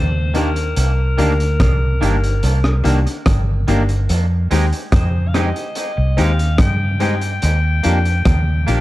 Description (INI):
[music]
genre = lovers rock reggae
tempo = 72 BPM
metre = 4/4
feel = straight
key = C minor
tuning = A4 = 437 Hz
[part]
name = bright alto saxophone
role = melody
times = 0.0-8.8 s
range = Bb4 to G5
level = -25 LUFS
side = left 3 dB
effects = tape echo
[part]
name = vintage muted fingered electric bass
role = bass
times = 0.0-8.8 s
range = G1 to G2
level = -16 LUFS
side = equal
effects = none
[part]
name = bright grand piano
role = accompaniment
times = 0.3-8.8 s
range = Ab3 to G4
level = -25 LUFS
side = left 5 dB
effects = none
[part]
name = twangy electric guitar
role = stabs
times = 0.3-8.8 s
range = Eb3 to G4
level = -25 LUFS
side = right 5 dB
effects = spring reverb, dub echo
[part]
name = crunchy breakbeat drum kit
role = drums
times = 0.3-8.8 s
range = hi-hat, kick drum, rim click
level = -20 LUFS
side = equal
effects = dub echo
[sound]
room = small room ambience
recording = dark, warm production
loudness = -14 LUFS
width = side -16 dB against mid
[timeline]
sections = 0.0-8.8 A section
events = none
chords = 0.0 Cm9; 4.1 Fm9; 7.4 Ebmaj7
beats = | 0.76 1.60 2.43 3.26 | 4.09 4.92 5.76 6.59 | 7.42 8.25